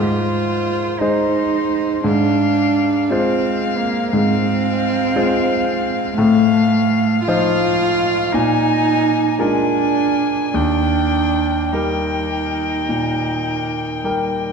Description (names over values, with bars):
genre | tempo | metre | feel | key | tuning
classical, slow romantic movement for piano trio | 50-59 BPM (dotted quarters) | 12/8 | rubato | Eb major | A4 = 440 Hz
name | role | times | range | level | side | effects
dark violin | melody | 0.0-14.5 s | C5 to Ab5 | -23 LUFS | left 8 dB | none
dark cello | second line | 0.0-14.5 s | A3 to F4 | -19 LUFS | right 5 dB | none
clear grand piano | accompaniment | 0.0-14.5 s | Eb2 to C5 | -19 LUFS | left 2 dB | none
room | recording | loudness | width
wet scoring stage reverb, RT60 1.6 s | dark, warm production | -15 LUFS | side -5 dB against mid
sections
0.0-14.5 A section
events
none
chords
0.0 Ab; 2.1 Fm/Ab; 6.2 F7/A; 8.3 Bb7; 10.5 Eb